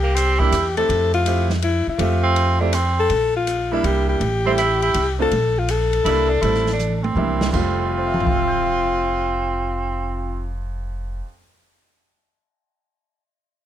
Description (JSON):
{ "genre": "jazz, small-group swing and bop", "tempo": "163 BPM", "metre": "3/4", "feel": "swing 66% on 8ths", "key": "F major", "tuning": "A4 = 443 Hz", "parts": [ { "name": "warm alto saxophone", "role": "melody", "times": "0.0-10.5 s", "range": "E4 to A4", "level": "-22 LUFS", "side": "left 4 dB", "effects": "none" }, { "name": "clear tenor saxophone", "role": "second line", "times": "0.0-10.5 s", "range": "Bb3 to E4", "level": "-23 LUFS", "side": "right 5 dB", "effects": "none" }, { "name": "upright bass", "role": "bass", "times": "0.0-11.2 s", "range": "F1 to F2", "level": "-23 LUFS", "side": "equal", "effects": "none" }, { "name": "open jazz drum kit", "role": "drums", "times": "0.2-8.4 s", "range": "crash cymbal, hi-hat, kick drum, ride cymbal, snare drum, toms", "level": "-27 LUFS", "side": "equal", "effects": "none" }, { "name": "clear concert grand piano", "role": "accompaniment", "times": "0.4-11.5 s", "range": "F2 to G6", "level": "-26 LUFS", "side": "right 5 dB", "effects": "none" } ], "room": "light reverb", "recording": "close, detailed microphones", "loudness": "-17 LUFS", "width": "side -10 dB against mid", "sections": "0.0-3.1 A section; 3.1-7.5 B section; 7.5-9.7 C section", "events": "drum fill 6.8-7.5", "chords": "0.0 C7; 0.9 Fmaj9; 3.1 Bb; 3.8 C9; 4.2 Am7; 4.9 Csus2; 5.3 Fadd11/Bb (rootless); 6.1 C9; 6.4 Am7; 7.2 C9; 7.5 Fmaj9" }